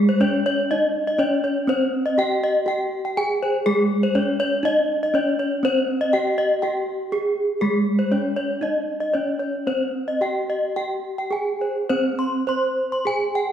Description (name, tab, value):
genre	gamelan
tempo	103-122 BPM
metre	4/4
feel	straight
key	C pelog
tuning	A4 = 440 Hz
part	gamelan-type bronze metallophone	melody	0.0-13.5 s	Ab3-20c to C5	-23 LUFS	right 1 dB	none
part	gamelan-type bronze metallophone	arpeggios	0.1-13.5 s	Ab4-20c to C6	-22 LUFS	left 1 dB	none
room	wet recital hall reverb, RT60 1.7 s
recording	heard from further back in the room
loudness	-20 LUFS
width	side -9 dB against mid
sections	0.0-11.9 A section; 11.9-13.5 B section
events	break 6.9-7.6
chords	none